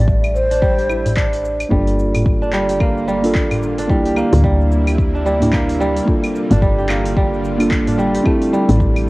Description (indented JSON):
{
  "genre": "organic downtempo",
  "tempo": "110 BPM",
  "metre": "4/4",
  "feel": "swing 60% on 16ths",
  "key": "G dorian",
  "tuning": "A4 = 440 Hz",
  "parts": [
    { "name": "breathy mellow ney", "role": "melody", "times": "0.0-1.1 s", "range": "C5", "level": "-21 LUFS", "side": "left 1 dB", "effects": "cassette tape, analog delay" },
    { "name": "kora", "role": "arpeggios", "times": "0.0-9.1 s", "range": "G3 to G4", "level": "-21 LUFS", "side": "right 1 dB", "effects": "cassette tape, analog delay" },
    { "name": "woody FM bass", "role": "bass", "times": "0.0-9.1 s", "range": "G1 to D2", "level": "-19 LUFS", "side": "equal", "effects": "sidechain pumping" },
    { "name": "deep house drum kit", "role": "drums", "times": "0.1-9.1 s", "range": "claves, handclaps, hi-hat, shaker", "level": "-27 LUFS", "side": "left 1 dB", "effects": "studio reverb, cassette tape" },
    { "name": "electronic kick drum", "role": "drums", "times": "0.1-8.9 s", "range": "none", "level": "-18 LUFS", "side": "equal", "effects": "studio reverb, cassette tape" },
    { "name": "darbuka", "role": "percussion", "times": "0.3-9.1 s", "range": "none", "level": "-24 LUFS", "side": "equal", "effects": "none" },
    { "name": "muted felt-like synth keys", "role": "accompaniment", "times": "1.7-9.1 s", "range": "Bb3 to A4", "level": "-20 LUFS", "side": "right 1 dB", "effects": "chorus, sidechain pumping, cassette tape, analog delay" },
    { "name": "bowed-like drone", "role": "sustained chords", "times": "2.2-9.1 s", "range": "C3 to F4", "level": "-26 LUFS", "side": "right 1 dB", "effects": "built-in reverb, sidechain pumping, cassette tape" }
  ],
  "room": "light reverb",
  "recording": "home recording on cassette",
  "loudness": "-14 LUFS",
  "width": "side -21 dB against mid",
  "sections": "0.0-9.1 A section",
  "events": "none",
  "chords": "0.0 Am7; 1.7 Gm7; 3.9 C7; 6.1 Gm7; 8.3 Am7"
}